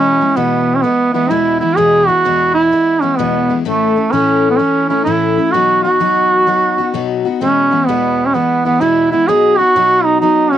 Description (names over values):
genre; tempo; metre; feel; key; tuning
country; 128 BPM; 4/4; swing 65% on 8ths; E major; A4 = 440 Hz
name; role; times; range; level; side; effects
warm duduk; melody; 0.0-10.6 s; A3 to G#4; -12 LUFS; right 3 dB; cassette tape
picked steel-string acoustic guitar; accompaniment; 0.0-10.6 s; E2 to F#4; -18 LUFS; left 8 dB; cassette tape
room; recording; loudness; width
wet booth ambience, RT60 0.2 s; home recording on cassette; -11 LUFS; side -11 dB against mid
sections
0.0-10.6 A section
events
none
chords
0.0 E; 3.7 A; 5.5 B; 7.4 E; 9.3 B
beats
0.36 0.84 1.31 | 1.78 2.25 2.72 3.19 | 3.65 4.12 4.59 5.06 | 5.53 6.00 6.47 6.94 | 7.41 7.88 8.35 8.81 | 9.28 9.75 10.22